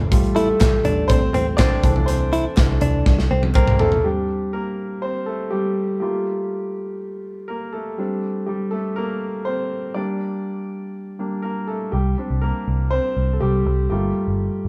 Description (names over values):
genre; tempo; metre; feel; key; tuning
piano-driven pop; 122 BPM; 4/4; straight; C mixolydian; A4 = 437 Hz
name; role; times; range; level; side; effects
clear concert grand piano; accompaniment; 0.0-14.7 s; E3 to D5; -25 LUFS; equal; none
vintage muted picked electric bass; bass; 0.0-4.0, 11.9-14.7 s; G1 to C2; -24 LUFS; equal; none
modern studio drum kit; drums; 0.1-4.0 s; handclaps, hi-hat, kick drum, snare drum, toms; -21 LUFS; equal; none
direct-recorded clean electric guitar; riff; 0.4-3.9 s; C4 to E4; -26 LUFS; equal; none
group handclap; percussion; 0.6-3.7 s; none; -43 LUFS; equal; none
room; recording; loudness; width
moderate stone room reverb, RT60 1.2 s; band playing live in one room; -21 LUFS; mono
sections
0.0-4.0 A section; 4.0-14.7 B section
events
grand piano solo 0.0-4.0, 4.0-14.7; drum fill 3.1-4.0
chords
0.1 Fadd9/A; 1.8 C6; 4.0 Csus2; 6.0 Gm7; 8.0 Csus2; 10.0 Gm; 11.9 Csus2; 13.9 Gm7